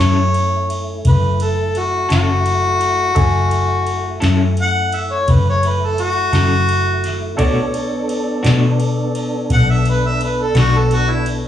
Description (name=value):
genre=slow blues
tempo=57 BPM (dotted quarters)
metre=12/8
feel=straight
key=F# minor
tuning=A4 = 440 Hz
part: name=mellow harmonica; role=melody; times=0.0-11.3 s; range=E4 to F#5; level=-18 LUFS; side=left 1 dB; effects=plate reverb, slapback echo
part: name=bright grand piano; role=accompaniment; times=0.0-11.5 s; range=A4 to G#5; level=-27 LUFS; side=right 4 dB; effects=plate reverb, slapback echo
part: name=clean electric guitar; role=accompaniment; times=0.0-10.8 s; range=B2 to A4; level=-22 LUFS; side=left 4 dB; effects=tremolo, slapback echo
part: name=tonewheel organ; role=sustained chords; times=0.0-11.5 s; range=A3 to A4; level=-25 LUFS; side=equal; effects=slow rotary speaker, overdrive
part: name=vintage muted fingered electric bass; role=bass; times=0.0-11.5 s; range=F#1 to B2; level=-17 LUFS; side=left 1 dB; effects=none
part: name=soft vintage rhythm box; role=drums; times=0.0-11.4 s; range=kick drum, ride cymbal, snare drum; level=-25 LUFS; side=equal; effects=none
room=light reverb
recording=live gig heard through the venue's PA, club reverb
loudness=-14 LUFS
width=side -10 dB against mid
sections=0.0-11.5 A section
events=harmonica solo 0.0-11.5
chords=0.0 F#m7; 7.4 Bm7